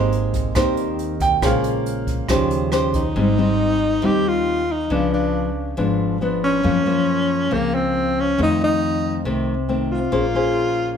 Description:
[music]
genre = bossa nova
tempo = 138 BPM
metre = 4/4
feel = straight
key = Ab major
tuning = A4 = 440 Hz
[part]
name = nylon-string guitar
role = accompaniment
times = 0.0-11.0 s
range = F2 to Db5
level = -21 LUFS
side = left 3 dB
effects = none
[part]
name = warm grand piano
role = accompaniment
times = 0.0-3.2 s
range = Db3 to G5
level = -23 LUFS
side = right 7 dB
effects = none
[part]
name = upright bass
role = bass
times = 0.0-11.0 s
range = Ab1 to Gb2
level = -26 LUFS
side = right 1 dB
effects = none
[part]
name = jazz brush drum kit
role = drums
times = 0.1-3.0 s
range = hi-hat, kick drum, rim click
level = -25 LUFS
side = equal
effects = none
[part]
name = breathy alto saxophone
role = melody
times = 3.0-11.0 s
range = Bb3 to G4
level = -20 LUFS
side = equal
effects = none
[sound]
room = moderate large studio reverb, RT60 1.2 s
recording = band playing live in one room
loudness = -17 LUFS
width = side -7 dB against mid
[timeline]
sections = 0.0-3.2 A section; 3.2-11.0 B section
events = grand piano solo 0.0-3.2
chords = 0.0 Abmaj7; 1.4 Bbm7; 2.3 Eb13; 3.2 Abmaj7; 4.9 Db7b9; 6.6 Gbmaj7#11; 8.4 F7; 10.1 Bbm9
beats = 0.12 0.56 0.99 | 1.42 1.86 2.29 2.73 | 3.16 3.60 4.03 4.47 | 4.90 5.34 5.77 6.21 | 6.64 7.08 7.51 7.95 | 8.38 8.82 9.25 9.69 | 10.12 10.56

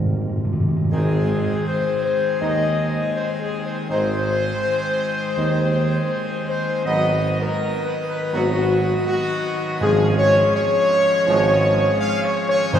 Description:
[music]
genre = classical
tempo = 81 BPM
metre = 4/4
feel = straight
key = Ab major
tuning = A4 = 440 Hz
[part]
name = clear trumpet section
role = melody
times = 0.0-12.8 s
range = F#4 to F5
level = -28 LUFS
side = equal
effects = none
[part]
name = clear trombone section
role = sustained chords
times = 0.0-12.8 s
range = Eb3 to Eb4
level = -31 LUFS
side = right 3 dB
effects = none
[part]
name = dark French horn section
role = sustained chords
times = 0.0-12.8 s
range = Bb3 to F5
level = -21 LUFS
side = left 2 dB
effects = none
[part]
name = warm tuba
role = bass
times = 0.0-12.8 s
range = Ab1 to Eb2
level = -25 LUFS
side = right 2 dB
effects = none
[part]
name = timpani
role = percussion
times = 0.0-2.0, 9.8-12.8 s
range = Ab2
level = -23 LUFS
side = right 1 dB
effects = none
[part]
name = pipe organ, full organ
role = sustained chords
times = 0.9-12.8 s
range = Eb3 to D#5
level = -26 LUFS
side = equal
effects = none
[sound]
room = wet church reverb, RT60 3.5 s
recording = heard from further back in the room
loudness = -18 LUFS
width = side -9 dB against mid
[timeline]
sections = 0.9-12.8 A section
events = timpani fill 0.0-0.9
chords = 0.0 Eb/Ab; 0.9 Ab; 6.9 B/Ab; 9.8 Db/Ab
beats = 0.13 | 0.92 1.67 2.42 3.16 | 3.90 4.65 5.38 6.12 | 6.86 7.60 8.33 9.07 | 9.81 10.54 11.28 12.01 | 12.73

